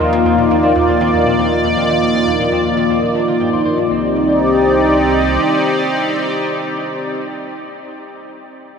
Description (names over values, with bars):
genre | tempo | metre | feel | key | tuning
ambient | 119 BPM | 4/4 | straight | C minor | A4 = 442 Hz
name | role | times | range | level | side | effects
sweeping resonant pad | sustained chords | 0.0-7.1 s | Bb3 to D5 | -14 LUFS | equal | chorus
analog pluck | riff | 0.0-4.1 s | C2 to Eb3 | -26 LUFS | equal | chorus, cassette tape, ping-pong delay
round analog bass | bass | 0.0-5.4 s | C2 to Eb2 | -27 LUFS | equal | none
semi-hollow electric guitar | arpeggios | 0.1-4.1 s | C4 to C5 | -31 LUFS | equal | none
room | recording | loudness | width
wet huge ambient reverb, RT60 8.5 s | none | -12 LUFS | side -6 dB against mid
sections
0.0-3.9 A section; 3.9-7.9 B section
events
fade-out on synth arpeggio sound 0.0-3.9; fade-out on clean electric guitar 0.0-3.9; fade-out on analog synth bass 0.0-3.9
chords
0.0 Ebsus2; 3.9 Cmadd9